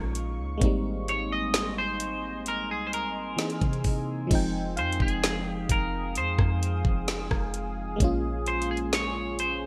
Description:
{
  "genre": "contemporary R&B",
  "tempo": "65 BPM",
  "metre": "4/4",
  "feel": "straight",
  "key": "unclear",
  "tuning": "A4 = 441 Hz",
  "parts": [
    { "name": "clean electric guitar", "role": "melody", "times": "0.0-9.7 s", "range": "Ab4 to Eb5", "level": "-34 LUFS", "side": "equal", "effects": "lush chorus, delay" },
    { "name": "FM electric piano", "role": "accompaniment", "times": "0.0-9.7 s", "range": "E3 to G5", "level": "-34 LUFS", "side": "equal", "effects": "chorus" },
    { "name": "deep dark ambient pad", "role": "sustained chords", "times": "0.0-9.7 s", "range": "Ab3 to Eb6", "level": "-41 LUFS", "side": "equal", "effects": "chorus, built-in reverb" },
    { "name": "soft 808-style bass", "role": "bass", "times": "0.0-9.7 s", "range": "F1 to C3", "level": "-34 LUFS", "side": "equal", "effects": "none" },
    { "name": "soft round pluck", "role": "texture", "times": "0.0-8.0 s", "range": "F5 to Ab5", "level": "-44 LUFS", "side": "equal", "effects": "none" },
    { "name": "smooth R&B drum kit", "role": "drums", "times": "0.2-9.6 s", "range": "crash cymbal, hi-hat, kick drum, rim click, snare drum", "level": "-30 LUFS", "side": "equal", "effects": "gated reverb" }
  ],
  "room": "light reverb",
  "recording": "bright 1980s-style digital production",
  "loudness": "-28 LUFS",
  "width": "mono",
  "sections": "0.0-4.3 A section; 4.3-9.7 A section",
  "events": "none",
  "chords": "0.0 Eb7sus4/Bb; 0.6 Abmaj7; 3.4 C7alt; 4.3 Fm7; 8.0 Bbm9"
}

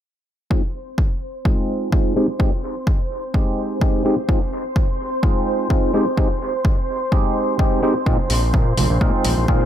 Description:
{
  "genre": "filtered disco house",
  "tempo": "127 BPM",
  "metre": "4/4",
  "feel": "swing 54% on 16ths",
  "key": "unclear",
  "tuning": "A4 = 440 Hz",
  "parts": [
    { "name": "clav", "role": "accompaniment", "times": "0.5-9.7 s", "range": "Ab3 to G4", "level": "-22 LUFS", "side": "equal", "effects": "phaser, sidechain pumping, low-pass filter, dub echo" },
    { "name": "string machine, full ensemble", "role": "sustained chords", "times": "0.5-9.7 s", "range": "C5 to C6", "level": "-26 LUFS", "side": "right 1 dB", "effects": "ensemble chorus, sidechain pumping, low-pass filter" },
    { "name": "electronic kick drum", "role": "drums", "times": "0.5-9.6 s", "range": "none", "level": "-18 LUFS", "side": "equal", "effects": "studio reverb" },
    { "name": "fat analog bass", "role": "bass", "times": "8.1-9.7 s", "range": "Bb1 to Bb2", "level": "-19 LUFS", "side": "equal", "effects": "sidechain pumping, low-pass filter" },
    { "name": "tambourine and congas", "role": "percussion", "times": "8.1-9.6 s", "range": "none", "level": "-27 LUFS", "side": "right 4 dB", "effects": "none" },
    { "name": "electronic hi-hat", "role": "drums", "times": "8.3-9.3 s", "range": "none", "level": "-26 LUFS", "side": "left 1 dB", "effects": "sidechain pumping on hats, studio reverb" }
  ],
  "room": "light reverb",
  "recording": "echo-heavy mix",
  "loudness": "-17 LUFS",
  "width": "side -10 dB against mid",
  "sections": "0.5-9.7 A section",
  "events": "filter sweep 0.5-9.7",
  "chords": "0.5 Ab6; 2.2 Abmaj7; 4.3 Ab6; 5.9 Abmaj7; 8.1 Bb9sus4"
}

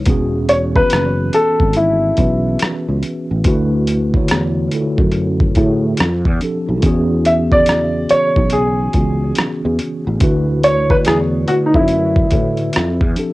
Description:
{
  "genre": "R&B, neo-soul",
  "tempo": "71 BPM",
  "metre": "4/4",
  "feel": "swing 63% on 16ths",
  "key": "E mixolydian",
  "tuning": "A4 = 440 Hz",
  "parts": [
    { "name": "mellow tine electric piano", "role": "accompaniment", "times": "0.0-13.3 s", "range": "C#3 to D5", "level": "-19 LUFS", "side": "equal", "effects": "medium stereo tremolo" },
    { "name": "sustaining fretless electric bass", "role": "bass", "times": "0.1-13.2 s", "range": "E1 to A2", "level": "-18 LUFS", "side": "equal", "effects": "ensemble chorus" },
    { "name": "boom bap sampler-style drum kit", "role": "drums", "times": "0.1-13.3 s", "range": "hi-hat, kick drum, rim click", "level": "-17 LUFS", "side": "equal", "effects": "overdrive, cassette tape" },
    { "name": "warm baby grand piano", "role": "melody", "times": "0.5-13.1 s", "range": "D#4 to E5", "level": "-15 LUFS", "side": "equal", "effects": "cassette tape" }
  ],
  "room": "light reverb",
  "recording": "home recording on cassette",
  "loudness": "-13 LUFS",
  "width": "side -19 dB against mid",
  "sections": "0.1-13.3 A section",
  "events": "none",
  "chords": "0.1 E6; 3.4 D69; 6.0 F6; 6.8 E6; 10.2 D69; 12.7 F6"
}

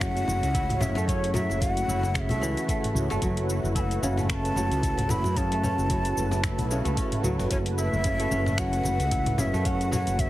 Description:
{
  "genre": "organic downtempo",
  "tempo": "112 BPM",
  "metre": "4/4",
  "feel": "swing 56% on 16ths",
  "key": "F# minor pentatonic",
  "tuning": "A4 = 436 Hz",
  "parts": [
    { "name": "breathy ney", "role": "melody", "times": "0.0-10.3 s", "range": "C#5 to B5", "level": "-31 LUFS", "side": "equal", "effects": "tape echo" },
    { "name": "warm analog pad", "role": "sustained chords", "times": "0.0-10.3 s", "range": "A3 to C#5", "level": "-33 LUFS", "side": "equal", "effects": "chorus, sidechain pumping" },
    { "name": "kora", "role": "arpeggios", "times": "0.0-10.3 s", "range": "C#3 to E4", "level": "-31 LUFS", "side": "equal", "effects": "tape echo" },
    { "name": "mellow fretless electric bass", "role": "bass", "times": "0.0-10.3 s", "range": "F#1 to F#2", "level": "-28 LUFS", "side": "equal", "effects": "sidechain pumping" },
    { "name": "afro-pop drum kit", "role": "drums", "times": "0.0-10.3 s", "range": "finger snaps, hi-hat, shaker, toms", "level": "-33 LUFS", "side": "equal", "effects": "none" },
    { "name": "electronic kick drum", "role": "drums", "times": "0.0-10.3 s", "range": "none", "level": "-30 LUFS", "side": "equal", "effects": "none" },
    { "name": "cajon", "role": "percussion", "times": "0.3-10.2 s", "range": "none", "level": "-33 LUFS", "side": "left 2 dB", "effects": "none" }
  ],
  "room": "light reverb",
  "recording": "heavily compressed radio sound",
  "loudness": "-23 LUFS",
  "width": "side -15 dB against mid",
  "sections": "0.0-10.3 A section",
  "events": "none",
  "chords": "0.0 F#m7"
}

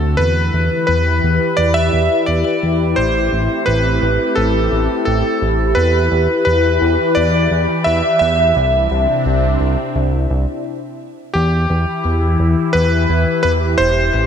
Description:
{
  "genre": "synthwave",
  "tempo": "86 BPM",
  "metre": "4/4",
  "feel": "straight",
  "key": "E minor",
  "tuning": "A4 = 440 Hz",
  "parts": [
    { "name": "clear electric grand piano", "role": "melody", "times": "0.0-14.3 s", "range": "G4 to E5", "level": "-17 LUFS", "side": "equal", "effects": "ping-pong delay" },
    { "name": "phased analog pad", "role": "sustained chords", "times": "0.0-14.3 s", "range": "C3 to C5", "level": "-19 LUFS", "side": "left 2 dB", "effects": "phaser, chorus" },
    { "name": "fat analog bass", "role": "bass", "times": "0.0-14.3 s", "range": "E1 to E2", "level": "-17 LUFS", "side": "equal", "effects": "tube saturation" }
  ],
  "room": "wet lush hall reverb, RT60 2.8 s",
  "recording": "bright 1980s-style digital production",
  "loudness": "-13 LUFS",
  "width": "side -8 dB against mid",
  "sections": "0.2-11.4 A section; 11.4-14.3 B section",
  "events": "stop 10.7-11.4",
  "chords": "0.2 Em; 3.0 Am7; 5.8 Em; 8.6 Cadd9; 11.4 Em"
}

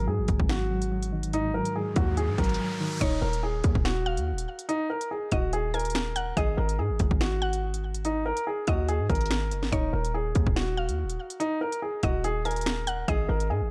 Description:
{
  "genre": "hip hop, drill",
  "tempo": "143 BPM",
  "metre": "4/4",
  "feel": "half-time",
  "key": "Eb minor",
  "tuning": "A4 = 440 Hz",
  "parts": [
    { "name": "dark baby grand piano", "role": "melody", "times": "0.0-13.7 s", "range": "Eb4 to Bb4", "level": "-33 LUFS", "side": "equal", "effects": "tape echo" },
    { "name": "soft electric-piano-like synth keys", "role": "accompaniment", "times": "0.0-3.0 s", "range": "Ab2 to Gb3", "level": "-34 LUFS", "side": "equal", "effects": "chorus, tremolo" },
    { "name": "hard-hitting 808-style bass", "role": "bass", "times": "0.0-13.7 s", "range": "Eb1 to Ab2", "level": "-31 LUFS", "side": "equal", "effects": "none" },
    { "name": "drill drum kit", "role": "drums", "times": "0.3-13.5 s", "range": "crash cymbal, finger snaps, hi-hat, kick drum, rim click, snare drum", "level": "-31 LUFS", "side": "equal", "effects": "none" },
    { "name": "riser", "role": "sound effects", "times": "1.8-3.0 s", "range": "none", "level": "-42 LUFS", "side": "equal", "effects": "none" },
    { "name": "mallet-like synth pluck", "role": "second line", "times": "3.0-13.7 s", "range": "Db5 to Ab5", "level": "-38 LUFS", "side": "equal", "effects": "chorus, tape echo" }
  ],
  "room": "digital ambience",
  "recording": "dark, warm production",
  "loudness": "-28 LUFS",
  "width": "mono",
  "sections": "0.0-3.0 A section; 3.0-13.7 B section",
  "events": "riser 1.8-3.0; break 2.6-3.0",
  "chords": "0.0 Ab5; 3.0 Ebm7; 6.4 Ab5; 9.7 Ebm7; 13.1 Ab5"
}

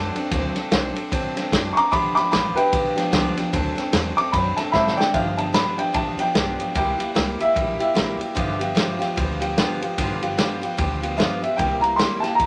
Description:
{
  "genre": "rockabilly",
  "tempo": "149 BPM",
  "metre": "4/4",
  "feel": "swing 60% on 8ths",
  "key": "G mixolydian",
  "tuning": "A4 = 441 Hz",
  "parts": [
    { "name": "clear upright piano", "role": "melody", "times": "0.0-12.5 s", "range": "B4 to D6", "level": "-24 LUFS", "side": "equal", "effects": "none" },
    { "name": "picked steel-string acoustic guitar", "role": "accompaniment", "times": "0.0-12.5 s", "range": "G2 to A4", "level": "-28 LUFS", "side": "equal", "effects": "none" },
    { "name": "upright bass", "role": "bass", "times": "0.0-12.5 s", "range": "F#1 to Ab2", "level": "-33 LUFS", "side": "equal", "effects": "none" },
    { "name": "vintage drum kit", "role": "drums", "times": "0.2-12.5 s", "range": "kick drum, ride cymbal, snare drum", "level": "-27 LUFS", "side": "equal", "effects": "none" }
  ],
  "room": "moderate club reverb, RT60 0.6 s",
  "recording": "none",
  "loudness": "-22 LUFS",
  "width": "mono",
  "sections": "0.0-5.1 A section; 5.1-12.5 B section",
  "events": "upright piano solo 0.0-5.1; drum fill 4.7-5.1",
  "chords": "0.0 D7; 1.9 G7; 3.5 D7; 5.1 G7; 6.8 C7; 8.4 G7; 11.6 C7"
}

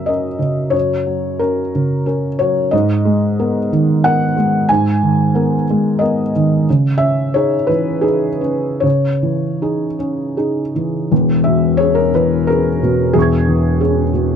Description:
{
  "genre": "neoclassical minimalist piano",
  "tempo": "90 BPM",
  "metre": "3/4",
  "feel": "rubato",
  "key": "C# dorian",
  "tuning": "A4 = 440 Hz",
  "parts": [
    { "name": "felt-muted upright piano", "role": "solo", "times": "0.0-14.4 s", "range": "E1 to G#6", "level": "-13 LUFS", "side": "equal", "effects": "none" }
  ],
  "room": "light reverb",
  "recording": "dark, warm production",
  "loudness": "-13 LUFS",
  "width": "side -8 dB against mid",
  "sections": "0.0-11.1 A section; 11.1-14.4 A section",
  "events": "none",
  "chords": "0.0 F#; 2.7 G#madd9; 6.7 C#madd9; 11.1 E6"
}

